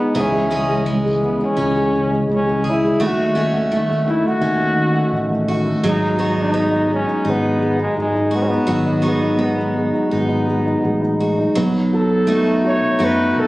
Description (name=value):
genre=folk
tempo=84 BPM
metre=4/4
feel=straight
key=unclear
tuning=A4 = 438 Hz
part: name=breathy flugelhorn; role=melody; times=0.0-13.5 s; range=G#3 to C#5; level=-21 LUFS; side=left 1 dB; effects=none
part: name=dark upright piano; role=accompaniment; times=0.0-13.5 s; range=C#3 to F#4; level=-20 LUFS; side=equal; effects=none
part: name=picked steel-string acoustic guitar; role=arpeggios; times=0.1-13.5 s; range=E3 to G#4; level=-21 LUFS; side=right 1 dB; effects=none
part: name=fingered electric bass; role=bass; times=0.2-13.5 s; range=G#1 to G#2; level=-24 LUFS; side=equal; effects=none
part: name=clear clarinet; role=second line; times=11.6-13.5 s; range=D#4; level=-24 LUFS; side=left 1 dB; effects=none
room=moderate concert hall reverb, RT60 2.5 s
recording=recorded on a phone in the room, club reverb, compression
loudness=-15 LUFS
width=side -18 dB against mid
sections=0.0-11.6 A section; 11.6-13.5 B section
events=none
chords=0.1 C#m; 3.0 D#m7b5; 5.8 G#m7; 11.6 B7